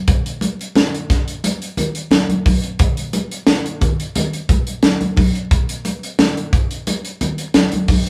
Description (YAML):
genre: funk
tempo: 88 BPM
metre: 4/4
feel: straight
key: none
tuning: none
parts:
  - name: crisp fusion drum kit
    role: drums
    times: 0.1-8.1 s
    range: hi-hat, kick drum, snare drum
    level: -19 LUFS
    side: equal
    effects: none
  - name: congas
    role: percussion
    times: 0.1-8.1 s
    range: none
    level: -23 LUFS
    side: equal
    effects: none
room: moderate small room reverb, RT60 0.5 s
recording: band playing live in one room, vinyl crackle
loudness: -18 LUFS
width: mono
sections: 0.0-8.1 A section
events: none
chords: none